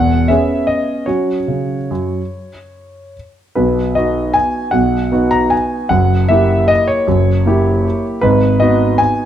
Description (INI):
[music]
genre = classical, piano waltz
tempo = 140-163 BPM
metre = 3/4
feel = rubato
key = unclear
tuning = A4 = 439 Hz
[part]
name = warm concert grand piano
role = solo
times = 0.0-9.3 s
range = E1 to A#5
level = -12 LUFS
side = equal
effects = none
[sound]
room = moderate recital hall reverb, RT60 1.4 s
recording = close, detailed microphones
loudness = -12 LUFS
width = side -10 dB against mid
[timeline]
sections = 0.0-9.3 A section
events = none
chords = 0.0 C#m7/E; 1.1 F#5; 3.6 B; 5.9 F#7b9; 8.2 G#m7